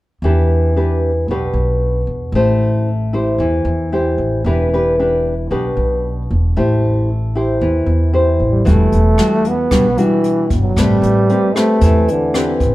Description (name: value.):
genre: bossa nova.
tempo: 114 BPM.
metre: 4/4.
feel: straight.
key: E minor.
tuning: A4 = 438 Hz.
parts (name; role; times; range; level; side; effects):
nylon-string guitar; accompaniment; 0.2-12.7 s; B2 to C5; -17 LUFS; left 1 dB; none.
upright bass; bass; 0.2-12.7 s; E1 to E2; -16 LUFS; equal; none.
mellow trombone; melody; 8.5-12.6 s; D3 to B3; -16 LUFS; right 1 dB; none.
jazz brush drum kit; drums; 8.7-12.7 s; hi-hat, kick drum, rim click; -21 LUFS; equal; none.
room: moderate large studio reverb, RT60 1.5 s.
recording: band playing live in one room.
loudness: -13 LUFS.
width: side -17 dB against mid.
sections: 0.2-8.7 A section; 8.7-12.7 B section.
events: none.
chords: 0.2 Em7; 2.3 Am7; 4.5 Em7; 6.6 Am7; 8.7 Em9; 10.8 Am9.